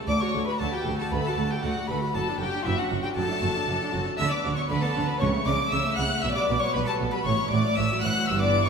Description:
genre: classical, baroque-style concerto movement with solo episodes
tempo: 117 BPM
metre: 4/4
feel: straight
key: D major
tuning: A4 = 437 Hz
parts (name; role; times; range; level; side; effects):
- dark chamber viola section; accompaniment; 0.0-8.7 s; E3 to A4; -33 LUFS; right 2 dB; none
- harpsichord; accompaniment; 0.0-8.7 s; D2 to D5; -34 LUFS; equal; none
- rich chamber violin section; melody; 0.1-8.7 s; E5 to F#6; -32 LUFS; left 3 dB; none
- warm violin; melody; 0.1-8.7 s; E5 to F#6; -31 LUFS; left 1 dB; none
- warm studio violin section; second line; 0.1-8.7 s; E4 to F#5; -30 LUFS; left 4 dB; none
- warm chamber cello section; bass; 0.1-8.7 s; D2 to D3; -30 LUFS; right 3 dB; none
- warm studio double bass section; bass; 0.1-8.7 s; F#1 to D2; -31 LUFS; right 4 dB; none
room: wet scoring stage reverb, RT60 1.6 s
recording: none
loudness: -23 LUFS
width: side -6 dB against mid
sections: 0.0-8.7 A section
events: none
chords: 0.1 D; 2.1 D/F#; 4.2 Bm/D; 5.2 A/C#; 6.2 G/B; 7.3 F#m/A

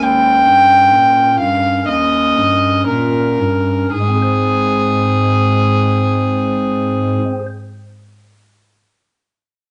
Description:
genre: classical, baroque-style sonata movement with continuo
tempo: 56-67 BPM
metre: 4/4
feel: straight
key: Ab major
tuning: A4 = 439 Hz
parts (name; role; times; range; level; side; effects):
- dark violin; melody; 0.0-7.2 s; Ab4 to G5; -16 LUFS; equal; none
- chamber organ, stopped flute; accompaniment; 0.0-7.5 s; Eb2 to C5; -20 LUFS; equal; none
- dark cello; bass; 0.0-7.2 s; Eb2 to Bb2; -23 LUFS; equal; none
room: wet large studio reverb, RT60 1.1 s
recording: nothing above 10.4 kHz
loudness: -14 LUFS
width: mono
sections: 0.0-3.9 A section; 3.9-8.2 B section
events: slowing down 0.0-3.9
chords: 0.0 Eb7sus4; 1.9 Eb7; 3.9 Ab

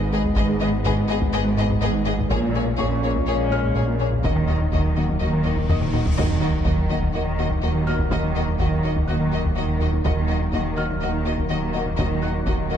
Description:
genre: cinematic, hybrid orchestral and electronic film score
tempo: 124 BPM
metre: 4/4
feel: straight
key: Eb minor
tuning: A4 = 441 Hz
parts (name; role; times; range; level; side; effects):
- hollow soft pad; sustained chords; 0.0-12.8 s; Gb3 to F5; -33 LUFS; equal; none
- mellow French horn section; sustained chords; 0.0-12.8 s; Gb3 to Db4; -32 LUFS; left 5 dB; none
- thumb-piano-like synth pluck; arpeggios; 0.0-12.8 s; Eb3 to Ab4; -34 LUFS; right 1 dB; none
- smooth synth bass; riff; 0.0-12.8 s; Eb2 to Bb3; -28 LUFS; left 2 dB; none
- dark symphonic cello section; bass; 0.0-12.8 s; Ab2 to Eb3; -28 LUFS; right 2 dB; none
- rich chamber double bass section; bass; 0.0-12.8 s; Ab1 to Eb2; -27 LUFS; right 4 dB; none
- sub bass with octave; bass; 0.0-12.8 s; Eb1 to Bb1; -29 LUFS; equal; none
- felt-muted upright piano; texture; 0.0-12.8 s; F5 to Gb6; -38 LUFS; equal; ping-pong delay
- rich symphonic violin section; melody; 0.1-12.8 s; Db5 to Eb5; -31 LUFS; left 5 dB; none
- warm symphonic violin section; second line; 0.1-12.8 s; Gb4 to Ab4; -33 LUFS; left 5 dB; none
- rich symphonic viola section; accompaniment; 0.1-12.8 s; Bb3 to Cb4; -34 LUFS; right 2 dB; none
- taiko ensemble; drums; 0.2-12.8 s; none; -27 LUFS; equal; none
- cymbal swell and sub drop; sound effects; 5.6-8.1 s; none; -30 LUFS; equal; none
room: moderate scoring stage reverb, RT60 1.7 s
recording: dark, warm production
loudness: -19 LUFS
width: side -9 dB against mid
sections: 0.0-6.2 A section; 6.2-12.8 B section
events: cymbal swell 5.6-6.2; drum fill 5.7-6.2; impact 6.2-8.1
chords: 0.0 Abm; 2.3 Bbm7; 4.2 Ebm

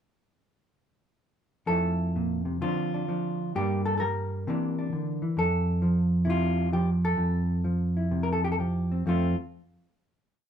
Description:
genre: solo jazz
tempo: 131 BPM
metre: 4/4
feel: swing 65% on 8ths, rubato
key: F major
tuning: A4 = 440 Hz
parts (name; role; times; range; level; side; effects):
- hollow-body jazz guitar; solo; 1.7-9.4 s; F2 to Bb4; -25 LUFS; equal; none
room: light reverb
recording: minimal, uncompressed stereo recording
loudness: -25 LUFS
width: side -8 dB against mid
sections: 1.7-9.0 A section; 9.0-10.5 final chord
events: none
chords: 1.7 Fmaj7; 2.6 Dm7; 3.5 Gm; 4.5 C9; 5.4 Fmaj9; 9.0 F

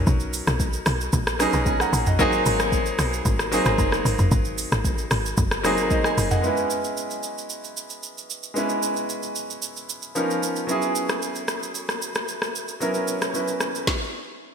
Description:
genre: amapiano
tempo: 113 BPM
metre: 4/4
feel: straight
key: C# dorian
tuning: A4 = 440 Hz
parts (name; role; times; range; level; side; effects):
- clear concert grand piano; accompaniment; 0.0-13.9 s; E#3 to A#5; -25 LUFS; equal; none
- tight log drum bass; bass; 0.0-6.4 s; F#1 to B1; -25 LUFS; equal; none
- afro-pop drum kit; drums; 0.1-14.0 s; hi-hat, kick drum, rim click, shaker, snare drum, toms; -25 LUFS; equal; gated reverb
room: moderate lush hall reverb, RT60 2.0 s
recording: bright 1980s-style digital production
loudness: -21 LUFS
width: side -7 dB against mid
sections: 0.0-6.4 A section; 6.4-14.5 B section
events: drop 0.0-6.4; stop 13.9-14.5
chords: 0.0 Bmaj9; 2.2 G#9; 6.4 C#m7; 10.2 C#13; 10.7 F#9sus4

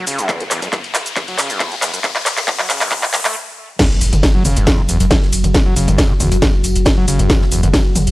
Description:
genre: driving peak-time techno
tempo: 137 BPM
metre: 4/4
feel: straight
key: unclear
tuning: A4 = 440 Hz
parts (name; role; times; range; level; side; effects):
- screaming distorted acid line; riff; 0.0-7.8 s; E2 to A3; -22 LUFS; equal; distortion, chorus, sidechain pumping, tape echo
- riser and impact; sound effects; 0.0-5.5 s; none; -24 LUFS; left 1 dB; none
- techno drum kit; drums; 0.1-8.1 s; crash cymbal, handclaps, hi-hat, ride cymbal, shaker, snare drum, toms; -17 LUFS; equal; high-pass filter on hats, high-pass filter on snare, high-pass filter on perc, high-pass filter on toms, high-pass filter on cymbals, high-pass filter on room
- electronic kick drum; drums; 0.3-7.8 s; none; -16 LUFS; equal; none
- deep dark ambient pad; drone; 4.8-8.1 s; F#3 to F#4; -23 LUFS; left 2 dB; chorus, built-in reverb, sidechain pumping
- unplugged drum kit; drums; 3.8-8.1 s; hi-hat, snare drum, tambourine; -32 LUFS; equal; none
- warm sub bass; bass; 4.0-8.1 s; F#1; -17 LUFS; equal; tube saturation, sidechain pumping, low-pass filter
room: light reverb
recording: dry, gritty hardware recording, high-pass filter, lossy compression artefacts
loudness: -13 LUFS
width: side -18 dB against mid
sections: 0.0-3.8 A section; 3.8-8.1 B section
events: build-up 0.0-3.8; drum fill 0.0-3.4; riser 0.0-3.4; stop 3.4-3.8; drop 3.8-8.1; impact 3.8-5.5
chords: 0.0 F#5

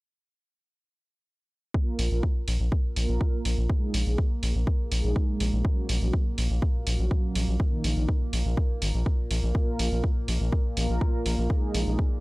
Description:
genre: melodic techno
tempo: 123 BPM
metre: 4/4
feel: straight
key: Bb minor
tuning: A4 = 439 Hz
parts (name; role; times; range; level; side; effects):
- brassy analog pad; stabs; 1.7-12.0 s; Eb3 to Bb4; -34 LUFS; right 2 dB; chorus, sidechain pumping, tape echo
- analog drone; drone; 2.6-12.2 s; Bb2 to Bb3; -38 LUFS; equal; chorus, sidechain pumping
- electronic kick drum; drums; 1.7-12.1 s; none; -25 LUFS; equal; none
- gritty driven synth bass; bass; 2.0-12.0 s; Ab1 to Bb1; -26 LUFS; equal; sidechain pumping
- electronic hi-hat; drums; 2.0-11.8 s; none; -34 LUFS; right 1 dB; sidechain pumping on hats
room: digital ambience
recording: dry, gritty hardware recording, transformer saturation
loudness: -24 LUFS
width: side -22 dB against mid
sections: 1.7-12.2 A section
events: filter sweep on analog synth bass 1.7-12.2; filter sweep on analog synth pad 1.7-12.2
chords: 1.7 Bb5; 3.7 Ab5/Bb; 5.6 Gb/Bb; 7.6 Eb5/Bb; 9.6 Bb5; 11.5 Ab5/Bb

